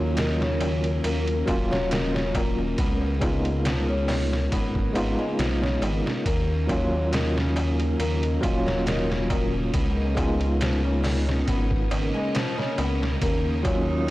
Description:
trip hop; 69 BPM; 4/4; swing 53% on 16ths; Eb minor; A4 = 439 Hz
bell-like tine electric piano; accompaniment; 0.0-14.1 s; Gb3 to F4; -28 LUFS; equal; tremolo, tape echo
string machine, cellos; sustained chords; 0.0-14.1 s; Db4 to Bb4; -32 LUFS; equal; ensemble chorus
flamenco guitar; arpeggios; 0.0-14.1 s; Db3 to Cb4; -31 LUFS; left 2 dB; vintage 12-bit sampler grit, tape echo
dark detuned saw bass; bass; 0.0-14.1 s; Eb1 to Eb2; -26 LUFS; equal
trip hop sampler-style drum kit; drums; 0.2-13.9 s; hi-hat, kick drum, ride cymbal, snare drum; -28 LUFS; equal; vintage 12-bit sampler grit
darbuka; percussion; 0.2-14.1 s; -38 LUFS; left 1 dB
backwards swelling texture; texture; 7.5-14.1 s; Eb4; -39 LUFS; right 3 dB; built-in reverb
light reverb; blown-out, overdriven recording, vinyl crackle, overdrive; -22 LUFS; side -17 dB against mid
0.0-14.1 A section
0.0 Ebm7; 2.8 Db7; 6.3 Ebm7; 9.7 Db7; 13.2 Ebm7

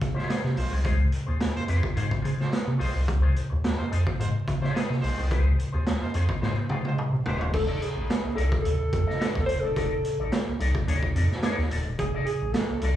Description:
funk; 108 BPM; 4/4; straight; A4 = 442 Hz
rubbery square bass; bass; 0.0-12.9 s; Eb1 to Db3; -26 LUFS; equal
raw garage drum kit; drums; 0.0-13.0 s; crash cymbal, hi-hat, kick drum, snare drum, toms; -27 LUFS; right 1 dB
electric guitar with an envelope filter; accompaniment; 0.1-13.0 s; Eb4 to Eb5; -35 LUFS; left 6 dB; vibrato effect, slapback echo
warm horn section; second line; 0.2-7.5 s; Ab3 to C5; -38 LUFS; right 2 dB; slapback echo
mellow alto saxophone; melody; 7.5-13.0 s; Ab4 to C5; -29 LUFS; right 1 dB; slapback echo
small room ambience; live gig heard through the venue's PA, club reverb, vinyl crackle; -24 LUFS; side -12 dB against mid
0.0-7.5 A section; 7.5-13.0 B section
drum fill 6.4-7.5
0.0 Dbmaj7; 7.5 F13

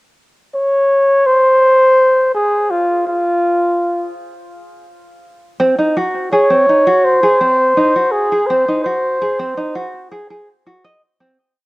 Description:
folktronica; 83 BPM; 4/4; straight; A4 = 439 Hz
breathy flugelhorn; melody; 0.5-9.9 s; F4 to Db5; -12 LUFS; equal
tenor ukulele; arpeggios; 5.6-11.4 s; C4 to Eb5; -17 LUFS; right 1 dB; vintage 12-bit sampler grit, cassette tape
moderate spring reverb, RT60 1.5 s; home recording on cassette; -11 LUFS; side -21 dB against mid
0.0-11.4 groove
fade-out 7.5-11.4
0.0 N.C.; 5.6 Ab7

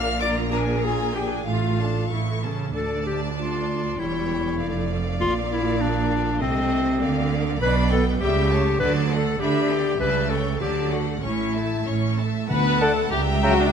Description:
quick classical-period movement for symphony orchestra; 98 BPM; 2/4; rubato; D minor, D major from 7.6 s; A4 = 441 Hz
clear chamber violin section; melody; 0.0-13.7 s; Eb5 to C#6; -34 LUFS; left 2 dB
bright clarinet; second line; 0.0-13.5 s; C4 to F5; -26 LUFS; left 4 dB
rich chamber violin section; second line; 0.0-13.7 s; A4 to F6; -31 LUFS; left 3 dB
rich chamber viola section; accompaniment; 0.0-13.7 s; F#3 to B4; -30 LUFS; left 1 dB
clear studio double bass section; bass; 0.0-13.7 s; E1 to D2; -26 LUFS; right 4 dB
clear symphonic cello section; bass; 0.0-13.7 s; C#2 to D3; -27 LUFS; right 5 dB
mellow French horn section; sustained chords; 12.5-13.7 s; D3 to B3; -29 LUFS; left 6 dB
timpani; percussion; 12.5-13.1 s; D3; -28 LUFS; equal
hollow silver concert flute; second line; 12.8-13.6 s; A5 to A#5; -28 LUFS; left 5 dB
mellow cor anglais; second line; 12.8-13.5 s; F#5 to G5; -30 LUFS; right 1 dB
mellow bassoon; accompaniment; 12.8-13.5 s; C#3 to D3; -29 LUFS; right 1 dB
moderate concert hall reverb, RT60 2.0 s; -20 LUFS; side -7 dB against mid
0.0-2.8 A section; 2.8-12.5 B section; 12.5-13.7 C section
0.2 Bb7; 1.5 Dm/A; 2.1 A; 2.8 Dm; 4.0 C#dim/E; 4.6 Dm/F; 5.2 Bb; 6.4 Adim/C; 7.0 Bb/D; 7.6 G/B; 8.2 A7/C#; 8.8 D; 9.4 Em7/D; 10.0 A7/C#; 10.6 D; 11.2 A; 12.5 D; 13.1 C#dim7

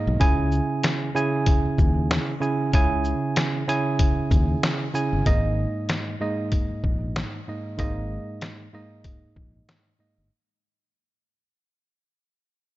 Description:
hip hop, boom-bap hip-hop; 95 BPM; 4/4; swing 57% on 16ths; A4 = 440 Hz
barky tine electric piano; accompaniment; 0.0-10.3 s; G#2 to G#5; -25 LUFS; right 2 dB
fingered electric bass; bass; 0.1-10.3 s; G1 to D#2; -25 LUFS; left 1 dB
trip hop sampler-style drum kit; drums; 0.2-9.9 s; hi-hat, kick drum, shaker, snare drum; -23 LUFS; left 1 dB
light reverb, digital ambience; nothing above 7.7 kHz; -21 LUFS; side -16 dB against mid
0.0-5.3 A section; 5.3-10.3 B section
fade-out 5.3-10.3
0.2 C#m; 5.3 G#sus2

